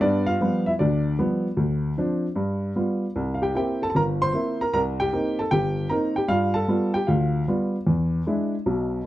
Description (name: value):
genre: solo jazz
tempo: 153 BPM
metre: 4/4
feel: swing 66% on 8ths, rubato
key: G mixolydian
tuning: A4 = 441 Hz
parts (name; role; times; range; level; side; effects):
- warm upright piano; solo; 0.0-9.0 s; G1 to C6; -21 LUFS; equal; none
room: light reverb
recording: dark, warm production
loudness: -21 LUFS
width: side -15 dB against mid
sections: 0.0-9.1 A section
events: none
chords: 0.0 G7; 1.6 Dm7; 2.4 G7; 3.2 C7; 4.7 Cm7; 6.3 G7; 7.9 E7